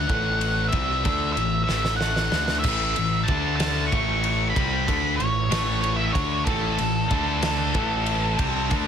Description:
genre	quiet-loud alternative rock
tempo	63 BPM (dotted quarters)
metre	6/8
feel	straight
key	unclear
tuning	A4 = 439 Hz
part	octave-fuzz lead guitar	melody	0.0-8.9 s	A4 to C#6	-26 LUFS	equal	distortion
part	heavy high-gain guitar	riff	0.0-8.9 s	A2 to D4	-31 LUFS	equal	distortion
part	overdriven electric guitar	riff	0.0-8.9 s	A2 to D4	-30 LUFS	left 11 dB	none
part	growling picked electric bass	bass	0.0-8.9 s	A1 to D2	-27 LUFS	right 1 dB	overdrive
part	loose indie drum kit	drums	0.1-8.9 s	crash cymbal, kick drum, ride cymbal, snare drum, splash cymbal	-27 LUFS	equal	none
part	scooped high-gain guitar	riff	2.6-8.9 s	A2 to D4	-31 LUFS	right 12 dB	distortion
room	little or no reverb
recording	dense, heavily limited modern master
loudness	-21 LUFS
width	side -8 dB against mid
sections	0.0-8.9 A section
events	drum fill 1.7-2.6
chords	0.1 A5; 3.3 D5; 3.9 A; 7.1 D5; 7.7 A5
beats	| 0.73 1.69 | 2.64 3.60 | 4.55 5.51 | 6.47 7.43 | 8.39

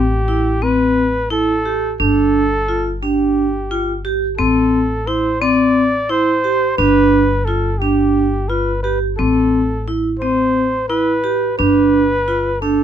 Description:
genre	contemporary instrumental, chamber music in an uneven meter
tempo	175 BPM (eighths)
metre	7/8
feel	straight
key	A minor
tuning	A4 = 437 Hz
part	warm flugelhorn	melody	0.0-12.8 s	G4 to D5	-19 LUFS	equal	none
part	upright bass	bass	0.0-12.8 s	G1 to A1	-22 LUFS	left 1 dB	none
part	vibraphone with hard mallets	arpeggios	0.3-12.8 s	C4 to G4	-16 LUFS	right 1 dB	none
room	little or no reverb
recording	none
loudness	-14 LUFS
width	side -9 dB against mid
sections	0.0-12.8 A section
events	none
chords	0.0 Am7; 2.0 G5; 4.4 Am; 6.8 G7; 9.2 Am; 11.6 G7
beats	0.28 0.62 0.97 1.31 1.65 | 1.99 2.33 2.67 3.02 3.36 3.70 4.04 | 4.39 4.73 5.07 5.41 5.76 6.10 6.44 | 6.79 7.13 7.47 7.82 8.16 8.50 8.85 | 9.19 9.53 9.88 10.22 10.56 10.91 11.25 | 11.60 11.94 12.28 12.63

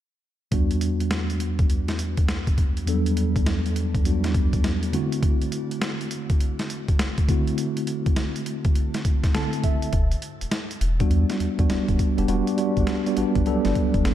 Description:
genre	R&B, new jack swing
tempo	102 BPM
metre	4/4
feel	swing 64% on 16ths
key	E minor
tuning	A4 = 436 Hz
part	mellow tine electric piano	accompaniment	0.5-14.1 s	E2 to A5	-24 LUFS	equal	medium stereo tremolo, shimmer reverb
part	boom bap sampler-style drum kit	drums	0.5-14.1 s	hi-hat, kick drum, snare drum	-24 LUFS	equal	none
part	round analog bass	bass	9.9-14.1 s	E1 to E2	-24 LUFS	equal	none
room	light reverb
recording	dark, warm production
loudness	-21 LUFS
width	side -12 dB against mid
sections	0.5-9.9 A section; 9.9-14.1 B section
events	tine electric piano fill 9.1-9.9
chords	0.5 Em9; 4.9 D9; 9.9 Em9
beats	| 0.52 1.11 1.70 2.29 | 2.87 3.46 4.05 4.64 | 5.23 5.81 6.40 6.99 | 7.58 8.17 8.76 9.34 | 9.93 10.52 11.11 11.70 | 12.29 12.87 13.46 14.05

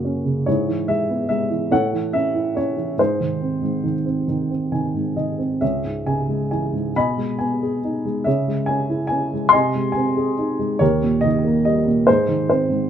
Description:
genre	classical, lyrical solo piano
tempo	47 BPM (dotted quarters)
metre	6/8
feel	rubato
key	unclear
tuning	A4 = 441 Hz
part	dark upright piano	solo	0.0-12.9 s	C#2 to B#5	-18 LUFS	equal	none
room	light reverb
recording	none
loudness	-18 LUFS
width	side -9 dB against mid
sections	0.0-12.9 A section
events	upright piano fill 4.3-5.6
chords	0.5 E/G#; 1.7 A; 3.0 G#; 5.6 C#m; 7.0 G#m/B; 8.3 C#m; 9.5 G#/B#; 10.8 D#; 12.1 G#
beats	| 0.47 1.72 | 2.99 4.29 | 5.61 6.96 | 8.26 9.53 | 10.80 12.08

